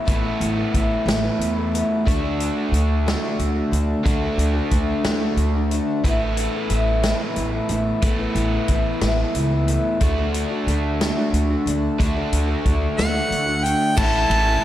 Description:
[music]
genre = folk rock and heartland rock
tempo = 60 BPM (dotted quarters)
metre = 6/8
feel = straight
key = unclear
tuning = A4 = 439 Hz
[part]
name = picked twelve-string acoustic guitar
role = accompaniment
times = 0.0-14.6 s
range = A2 to F#4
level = -26 LUFS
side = left 2 dB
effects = none
[part]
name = overdriven electric guitar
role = riff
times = 0.0-14.6 s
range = A2 to F#4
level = -24 LUFS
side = right 1 dB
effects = spring reverb, slapback echo
[part]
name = upright bass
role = bass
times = 0.1-14.6 s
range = A1 to E2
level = -23 LUFS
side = equal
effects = none
[part]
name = vintage drum kit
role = drums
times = 0.1-14.5 s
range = crash cymbal, hi-hat, kick drum, ride cymbal, snare drum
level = -24 LUFS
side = equal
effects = none
[part]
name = clear harmonica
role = melody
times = 13.0-14.6 s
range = F#5 to A5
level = -20 LUFS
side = equal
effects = slapback echo
[part]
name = tube shaker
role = percussion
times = 14.0-14.4 s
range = none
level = -40 LUFS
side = right 5 dB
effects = none
[sound]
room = moderate lush hall reverb, RT60 2.1 s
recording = big arena sound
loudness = -18 LUFS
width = side -12 dB against mid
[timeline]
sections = 0.0-14.0 A section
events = none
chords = 0.0 Asus2; 2.1 D; 6.0 Asus2; 10.0 D; 14.0 A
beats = | 0.07 1.07 | 2.06 3.06 | 4.05 5.04 | 6.04 7.03 | 8.03 9.02 | 10.01 11.00 | 11.99 12.98 | 13.97

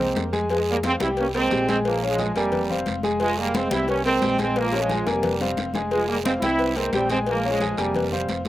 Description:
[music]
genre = latin, salsa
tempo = 177 BPM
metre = 4/4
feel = straight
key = F minor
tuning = A4 = 439 Hz
[part]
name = brilliant trombone section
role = melody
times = 0.0-8.3 s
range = C3 to E4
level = -24 LUFS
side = right 2 dB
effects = slapback echo
[part]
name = warm upright piano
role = accompaniment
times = 0.0-8.4 s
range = G3 to Ab5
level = -25 LUFS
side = left 1 dB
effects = slapback echo
[part]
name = fingered electric bass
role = bass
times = 0.0-8.5 s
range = F1 to F2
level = -32 LUFS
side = equal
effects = none
[part]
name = congas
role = percussion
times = 0.0-8.5 s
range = none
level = -32 LUFS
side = left 3 dB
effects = none
[part]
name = bongos and cowbell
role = percussion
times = 0.2-8.5 s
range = none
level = -31 LUFS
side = left 4 dB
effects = none
[part]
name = guiro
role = percussion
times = 0.2-8.5 s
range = none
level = -35 LUFS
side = right 7 dB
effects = none
[sound]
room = light reverb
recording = recorded outdoors, with no room sound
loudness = -20 LUFS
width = side -14 dB against mid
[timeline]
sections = 0.5-8.5 A section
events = drum fill 4.6-5.9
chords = 0.0 C5; 0.5 Fmadd9; 1.2 C5; 1.9 Bbm7; 2.5 Fmadd9; 3.9 C5; 4.6 Bbm7; 5.2 Fmadd9; 6.6 C5; 7.3 Bbm7; 7.9 Fmadd9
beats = 0.16 | 0.50 0.84 1.18 1.52 | 1.85 2.19 2.53 2.87 | 3.21 3.55 3.89 4.22 | 4.56 4.90 5.24 5.58 | 5.92 6.25 6.59 6.93 | 7.27 7.61 7.95 8.29

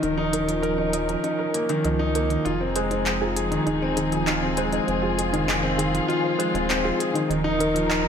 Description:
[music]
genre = piano and strings electronica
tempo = 99 BPM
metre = 4/4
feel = straight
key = F minor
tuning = A4 = 440 Hz
[part]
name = muted studio string section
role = sustained chords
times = 0.0-8.1 s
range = F3 to Bb4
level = -28 LUFS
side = left 1 dB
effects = low-pass filter
[part]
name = soft round pluck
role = arpeggios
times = 0.0-8.0 s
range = Eb4 to Eb5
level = -32 LUFS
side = right 4 dB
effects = none
[part]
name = warm concert grand piano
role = riff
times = 0.0-8.1 s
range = Eb3 to Eb5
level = -23 LUFS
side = left 1 dB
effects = tape echo
[part]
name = round analog bass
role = bass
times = 0.0-8.1 s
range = Eb1 to Db2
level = -31 LUFS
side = equal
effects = tube saturation
[part]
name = minimal click drum kit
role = drums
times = 0.0-8.0 s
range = handclaps, hi-hat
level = -29 LUFS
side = equal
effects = none
[sound]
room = moderate concert hall reverb, RT60 1.9 s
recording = none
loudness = -21 LUFS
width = side -7 dB against mid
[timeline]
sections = 0.0-8.1 A section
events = build-up 0.0-8.1; filter sweep on string section 0.0-8.1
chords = 0.0 Ebsus2; 2.5 Fm7; 7.3 Ebsus2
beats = | 0.03 0.64 1.25 1.85 | 2.46 3.06 3.67 4.28 | 4.88 5.49 6.09 6.70 | 7.31 7.91

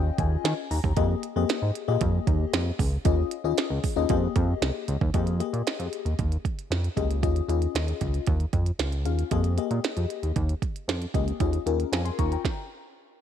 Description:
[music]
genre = early-eighties boogie funk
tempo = 115 BPM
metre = 4/4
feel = straight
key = F minor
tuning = A4 = 441 Hz
[part]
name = FM electric piano with soft pad layer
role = accompaniment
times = 0.0-12.6 s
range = Bb3 to Db6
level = -30 LUFS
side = left 14 dB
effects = chorus
[part]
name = chorused synth bass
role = bass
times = 0.0-12.4 s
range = C2 to Eb3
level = -26 LUFS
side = equal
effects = none
[part]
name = minimal click drum kit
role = drums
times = 0.2-12.6 s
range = hi-hat, kick drum, snare drum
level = -28 LUFS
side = right 3 dB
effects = overdrive
[sound]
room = little or no reverb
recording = 1960s-style stereo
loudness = -24 LUFS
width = side -9 dB against mid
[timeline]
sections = 0.0-5.1 A section; 5.1-13.2 B section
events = FM electric piano fill 0.0-1.0; stop 12.4-13.2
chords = 0.0 Eb9sus4; 1.0 Fm11; 3.1 Eb9sus4; 4.1 Fm11; 7.2 Eb9sus4; 9.3 Fm11; 11.4 Eb9sus4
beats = 0.45 | 0.97 1.49 2.01 2.53 | 3.06 3.58 4.10 4.62 | 5.14 5.67 6.19 6.71 | 7.23 7.75 8.27 8.79 | 9.32 9.84 10.36 10.88 | 11.40 11.93 12.45

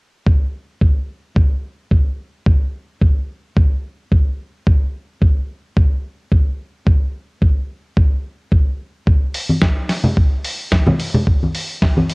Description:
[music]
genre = nu-disco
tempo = 109 BPM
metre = 4/4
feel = swing 54% on 16ths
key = none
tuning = none
[part]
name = electronic kick drum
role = drums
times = 0.3-11.9 s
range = none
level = -14 LUFS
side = equal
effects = cassette tape
[part]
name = dusty soul sampler-style drum kit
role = drums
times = 9.3-12.1 s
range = hi-hat, snare drum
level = -21 LUFS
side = equal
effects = cassette tape
[part]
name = congas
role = percussion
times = 9.5-12.1 s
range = none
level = -16 LUFS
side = equal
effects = none
[sound]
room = little or no reverb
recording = home recording on cassette, lossy compression artefacts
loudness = -15 LUFS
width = side -36 dB against mid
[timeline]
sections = 0.3-12.1 A section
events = none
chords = none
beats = | 0.26 0.81 1.36 1.92 | 2.47 3.02 3.57 4.12 | 4.67 5.22 5.77 6.32 | 6.87 7.42 7.97 8.52 | 9.07 9.62 10.17 10.72 | 11.27 11.82

